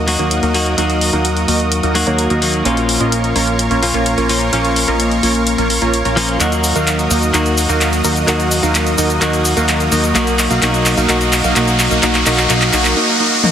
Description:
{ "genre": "EDM, festival progressive house", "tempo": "128 BPM", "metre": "4/4", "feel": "straight", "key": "Eb minor", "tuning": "A4 = 436 Hz", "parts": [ { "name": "direct-recorded clean electric guitar", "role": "accompaniment", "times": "0.0-13.0 s", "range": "Bb2 to Gb4", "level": "-19 LUFS", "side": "left 2 dB", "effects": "vintage 12-bit sampler grit, digital delay" }, { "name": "supersaw pad", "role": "sustained chords", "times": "0.0-13.0 s", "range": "Gb4 to Eb6", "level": "-23 LUFS", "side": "right 2 dB", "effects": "none" }, { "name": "supersaw stab", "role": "riff", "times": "0.0-13.5 s", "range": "Bb3 to F5", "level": "-17 LUFS", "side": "right 1 dB", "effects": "low-pass filter, digital delay" }, { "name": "fat analog bass", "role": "bass", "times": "0.0-12.9 s", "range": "Bb1 to Eb2", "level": "-20 LUFS", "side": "equal", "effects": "none" }, { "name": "big-room dance drum kit", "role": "drums", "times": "0.1-13.5 s", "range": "cabasa, handclaps, hi-hat, toms", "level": "-18 LUFS", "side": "left 1 dB", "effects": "soft clipping on snare" }, { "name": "riser", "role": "sound effects", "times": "8.5-13.5 s", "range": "none", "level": "-22 LUFS", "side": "equal", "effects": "none" } ], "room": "moderate huge ambient reverb, RT60 4.7 s", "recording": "dense, heavily limited modern master", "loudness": "-12 LUFS", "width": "side -9 dB against mid", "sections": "0.0-13.5 A section", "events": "build-up 0.0-13.5; filter sweep on supersaw synth 0.0-13.5; drum fill 6.4-13.0; riser 8.5-13.5", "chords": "0.0 Ebm; 2.7 Bbm; 6.4 Ebm; 10.2 B", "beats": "0.31 | 0.78 1.25 1.72 2.19 | 2.65 3.12 3.59 4.06 | 4.53 5.00 5.47 5.94 | 6.41 6.87 7.34 7.81 | 8.28 8.75 9.22 9.69 | 10.15 10.62 11.09 11.56 | 12.03 12.50 12.97 13.44" }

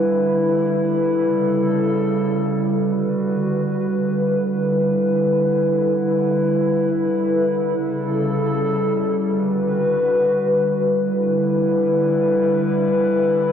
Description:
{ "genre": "hip hop", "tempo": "free time", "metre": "none", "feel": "none", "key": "E dorian", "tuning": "A4 = 440 Hz", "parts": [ { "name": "warbly tape-like pad", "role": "solo", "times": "0.0-13.5 s", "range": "C#3 to B4", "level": "-17 LUFS", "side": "equal", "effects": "chorus, built-in reverb" } ], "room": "moderate huge ambient reverb, RT60 5.2 s", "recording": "worn, warbling old tape, cassette tape, warbly pitch drift", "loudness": "-17 LUFS", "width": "side -8 dB against mid", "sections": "0.0-10.9 A section; 10.9-13.5 B section", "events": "none", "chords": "0.0 Em7; 1.2 A7; 2.8 Gmaj7; 4.4 Em7; 7.6 A7; 9.3 Gmaj7; 10.9 Em7", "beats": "free time" }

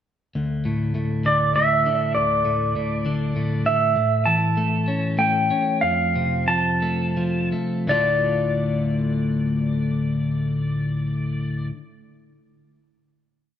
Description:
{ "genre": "post-rock", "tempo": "80-100 BPM", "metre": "3/4", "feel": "straight", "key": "D minor", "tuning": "A4 = 440 Hz", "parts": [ { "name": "twelve-string electric guitar", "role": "arpeggios", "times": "0.4-11.7 s", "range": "D2 to F4", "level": "-22 LUFS", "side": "left 1 dB", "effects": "slapback echo" }, { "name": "clean lap steel guitar", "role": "melody", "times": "1.3-11.7 s", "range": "D5 to A5", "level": "-22 LUFS", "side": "right 1 dB", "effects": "slapback echo" } ], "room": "light reverb, digital ambience", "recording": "none", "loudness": "-19 LUFS", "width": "side -9 dB against mid", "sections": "0.4-7.9 A section; 7.9-12.4 final chord", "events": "slowing down 4.0-7.9", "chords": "0.4 D5; 4.0 A; 5.8 F; 7.9 Dm", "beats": "| 0.36 0.96 1.56 | 2.16 2.76 3.36 | 3.96 4.57 5.18 | 5.82 6.47 7.16 | 7.89 8.64 9.38 | 10.13 10.88 11.62" }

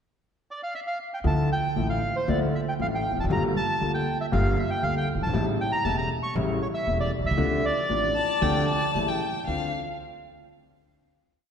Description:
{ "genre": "tango", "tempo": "117 BPM", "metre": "4/4", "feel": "rubato", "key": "D minor", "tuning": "A4 = 438 Hz", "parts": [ { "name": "bandoneon", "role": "melody", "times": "0.5-8.9 s", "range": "C5 to C#6", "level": "-28 LUFS", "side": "right 1 dB", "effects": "none" }, { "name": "clear concert grand piano", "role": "accompaniment", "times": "1.2-9.7 s", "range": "E1 to F4", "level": "-27 LUFS", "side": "left 1 dB", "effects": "none" }, { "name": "upright bass", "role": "bass", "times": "1.2-9.7 s", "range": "E1 to D2", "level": "-30 LUFS", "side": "right 1 dB", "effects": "none" }, { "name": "warm violin", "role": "second line", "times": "8.2-9.7 s", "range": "F5 to A5", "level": "-29 LUFS", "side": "left 3 dB", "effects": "none" } ], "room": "wet concert hall reverb, RT60 2.0 s", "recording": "recorded in a church or concert hall", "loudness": "-23 LUFS", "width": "side -7 dB against mid", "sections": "0.0-1.2 pickup bar; 1.2-9.5 A section; 9.5-11.5 final chord", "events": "none", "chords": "0.0 N.C.; 1.2 Dmadd9; 3.3 Gm7; 5.3 A7; 7.4 Dm7; 8.9 A7; 9.5 Dm7", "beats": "0.22 0.73 | 1.25 1.77 2.28 2.80 | 3.31 3.82 4.33 4.83 | 5.34 5.85 6.36 6.87 | 7.38 7.89 8.42 8.94 | 9.47" }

